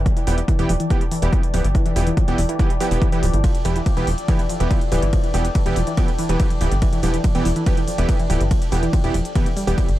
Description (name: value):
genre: driving peak-time techno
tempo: 142 BPM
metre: 4/4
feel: straight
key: E phrygian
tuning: A4 = 440 Hz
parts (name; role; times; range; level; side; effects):
- tight sequencer bass; bass; 0.0-10.0 s; D1 to G1; -20 LUFS; equal; sidechain pumping
- deep dark ambient pad; texture; 0.0-10.0 s; A4 to G5; -29 LUFS; left 2 dB; chorus, built-in reverb, sidechain pumping
- warbly dusty pluck; riff; 0.1-9.8 s; E3 to G3; -26 LUFS; equal; chorus, tube saturation, sidechain pumping, tape echo
- electronic kick drum; drums; 0.1-9.9 s; none; -19 LUFS; equal; none
- techno drum kit; drums; 0.1-10.0 s; hi-hat, ride cymbal; -34 LUFS; equal; none
- supersaw stab; stabs; 0.3-9.9 s; E3 to G4; -26 LUFS; right 3 dB; cassette tape, sidechain pumping, digital delay
room: little or no reverb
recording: dark, warm production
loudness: -17 LUFS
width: side -15 dB against mid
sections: 0.0-10.0 A section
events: none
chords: 0.0 Em